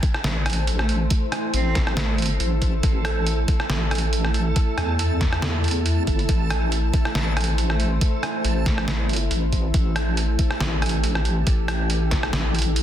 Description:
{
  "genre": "deep dubstep",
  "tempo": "139 BPM",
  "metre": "4/4",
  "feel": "swing 55% on 16ths, half-time",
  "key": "A minor",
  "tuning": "A4 = 440 Hz",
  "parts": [
    { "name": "deep dark ambient pad", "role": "sustained chords", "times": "0.0-12.8 s", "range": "A3 to C5", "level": "-29 LUFS", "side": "equal", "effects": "chorus, built-in reverb, vintage 12-bit sampler grit" },
    { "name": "electronic kick drum", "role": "drums", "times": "0.0-12.2 s", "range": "none", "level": "-21 LUFS", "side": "equal", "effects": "overdrive" },
    { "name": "trip hop sampler-style drum kit", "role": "drums", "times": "0.0-12.8 s", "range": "hi-hat, rim click, snare drum", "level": "-26 LUFS", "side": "right 1 dB", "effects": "none" },
    { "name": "backwards swelling texture", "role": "texture", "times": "0.6-12.8 s", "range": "A4", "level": "-34 LUFS", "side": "right 3 dB", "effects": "built-in reverb" },
    { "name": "deep soft wobble bass", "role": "bass", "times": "0.2-12.8 s", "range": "G1 to E2", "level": "-23 LUFS", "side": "equal", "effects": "chorus" },
    { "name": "clear cello", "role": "melody", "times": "0.8-2.6, 7.7-9.1 s", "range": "A3 to C4", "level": "-32 LUFS", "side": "right 2 dB", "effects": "dub echo" }
  ],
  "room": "little or no reverb",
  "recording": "dense, heavily limited modern master",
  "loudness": "-20 LUFS",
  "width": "side -11 dB against mid",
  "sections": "0.0-12.8 A section",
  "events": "none",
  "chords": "0.0 Am"
}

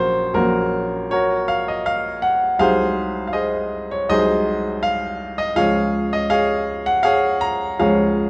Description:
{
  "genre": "classical, romantic character piece for solo piano",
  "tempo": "80 BPM",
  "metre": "4/4",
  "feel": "rubato",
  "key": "Db major",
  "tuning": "A4 = 440 Hz",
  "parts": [
    { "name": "warm baby grand piano", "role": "solo", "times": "0.0-8.3 s", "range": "Bb1 to Bb5", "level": "-20 LUFS", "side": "equal", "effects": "none" }
  ],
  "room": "wet recital hall reverb, RT60 1.7 s",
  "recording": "none",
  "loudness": "-20 LUFS",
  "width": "mono",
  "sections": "0.0-8.3 A section",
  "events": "none",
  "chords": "0.0 Gb/Bb; 2.6 Ab7/C; 5.6 Db"
}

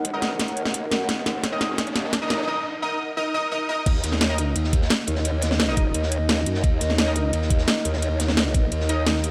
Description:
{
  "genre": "dark technical drum and bass",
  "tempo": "173 BPM",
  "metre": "4/4",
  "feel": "straight",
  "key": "Eb minor",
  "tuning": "A4 = 441 Hz",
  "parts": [
    { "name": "dark analog pad", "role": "sustained chords", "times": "0.0-9.3 s", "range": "Eb4 to Eb5", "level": "-33 LUFS", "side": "equal", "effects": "subtle chorus, sidechain pumping" },
    { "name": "growl bass", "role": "bass", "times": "0.0-9.3 s", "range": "Eb2 to Gb2", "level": "-27 LUFS", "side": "equal", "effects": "chorus, overdrive, high-pass filter" },
    { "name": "drum and bass drum kit", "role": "drums", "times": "0.0-9.3 s", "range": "crash cymbal, hi-hat, snare drum", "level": "-26 LUFS", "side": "equal", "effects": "none" },
    { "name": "electronic kick drum", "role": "drums", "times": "0.0-8.6 s", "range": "none", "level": "-24 LUFS", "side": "equal", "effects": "high-pass filter on kick, high-pass filter on room" },
    { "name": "riser", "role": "sound effects", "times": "0.0-2.5 s", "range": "none", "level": "-36 LUFS", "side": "equal", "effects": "none" },
    { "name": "warbly tape-like pad", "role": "texture", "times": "0.0-2.5 s", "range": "D#4 to Gb5", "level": "-35 LUFS", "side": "equal", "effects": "chorus, built-in reverb, phaser, sidechain pumping" },
    { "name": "orchestra-hit-like synth stab", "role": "stabs", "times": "0.1-9.0 s", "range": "Eb4 to Eb5", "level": "-30 LUFS", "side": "equal", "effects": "built-in reverb, delay" },
    { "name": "crunchy breakbeat drum kit", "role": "drums", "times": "3.9-9.3 s", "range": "ride cymbal, snare drum", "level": "-36 LUFS", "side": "equal", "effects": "high-pass filter on cymbals, high-pass filter on snare, high-pass filter on room" }
  ],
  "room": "moderate lush hall reverb, RT60 1.8 s",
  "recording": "none",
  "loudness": "-23 LUFS",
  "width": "mono",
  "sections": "0.0-3.9 A section; 3.9-9.3 B section",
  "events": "build-up 0.0-3.9; drum fill 0.0-2.5; riser 0.0-2.5; drop 3.9-9.3",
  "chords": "0.0 Ebm; 3.9 Eb5"
}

